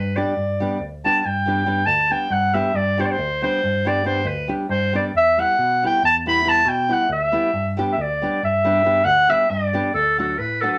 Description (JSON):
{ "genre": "balkan folk, Balkan wedding band", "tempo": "275 BPM (eighths)", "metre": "11/8", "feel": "straight", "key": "G major", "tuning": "A4 = 441 Hz", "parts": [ { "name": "clear clarinet", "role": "melody", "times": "0.0-10.8 s", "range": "A4 to B5", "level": "-21 LUFS", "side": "equal", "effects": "none" }, { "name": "bell-like tine electric piano", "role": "bass", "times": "0.0-10.7 s", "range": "D2 to B2", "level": "-29 LUFS", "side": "equal", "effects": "none" }, { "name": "nylon-string guitar", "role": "accompaniment", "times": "0.2-10.8 s", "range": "F#3 to G4", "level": "-28 LUFS", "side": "equal", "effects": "none" } ], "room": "wet studio ambience, RT60 0.4 s", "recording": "none", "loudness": "-20 LUFS", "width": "mono", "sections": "0.0-9.9 A section", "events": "clarinet solo 0.0-9.9", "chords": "0.0 G; 5.1 Em; 7.5 G; 9.9 D" }